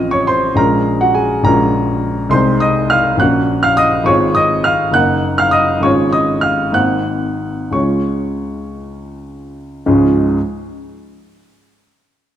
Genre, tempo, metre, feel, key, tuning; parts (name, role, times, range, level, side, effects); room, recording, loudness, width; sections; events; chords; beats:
classical, romantic character piece for solo piano; 54-70 BPM (dotted quarters); 6/8; rubato; Db major; A4 = 440 Hz
clear baby grand piano; solo; 0.0-10.4 s; Gb1 to Gb6; -12 LUFS; equal
moderate scoring stage reverb, RT60 1.8 s; dark, warm production; -12 LUFS; side -10 dB against mid
0.0-9.9 A section; 9.9-11.9 B section
slowing down 5.0-9.9
0.0 F7/A; 0.6 Bbm7; 2.3 Ab/C; 3.2 Gb/Bb; 4.1 Fm/Ab; 5.0 Ebm/Gb; 5.9 Db/Ab; 6.8 Ab9; 7.7 Db
| 0.56 1.45 | 2.34 3.22 | 4.09 4.96 | 5.86 6.76 | 7.74 8.79 | 9.86